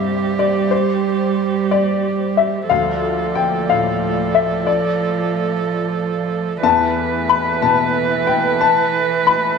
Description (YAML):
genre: neoclassical piano and strings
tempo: 61 BPM (dotted quarters)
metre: 6/8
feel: rubato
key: unclear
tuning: A4 = 440 Hz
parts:
  - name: warm cello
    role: second line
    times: 0.0-9.6 s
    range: E3 to G3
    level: -22 LUFS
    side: right 7 dB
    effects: none
  - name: dark baby grand piano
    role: accompaniment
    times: 0.0-9.6 s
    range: C2 to B5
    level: -18 LUFS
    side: left 9 dB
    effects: none
  - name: warm viola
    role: accompaniment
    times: 0.0-9.6 s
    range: G4 to B4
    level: -21 LUFS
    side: right 8 dB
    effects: none
  - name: warm analog pad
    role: sustained chords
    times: 0.0-9.6 s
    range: G3 to D5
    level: -27 LUFS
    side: left 1 dB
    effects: chorus
room: wet echo chamber reverb, RT60 1.4 s, studio reverb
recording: 1960s-style stereo with parts hard left and right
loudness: -15 LUFS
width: side -5 dB against mid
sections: 0.0-9.6 A section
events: none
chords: 0.0 C; 2.7 Dm; 6.6 Asus2/E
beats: | 0.71 1.71 | 2.70 3.69 | 4.67 5.65 | 6.63 7.61 | 8.60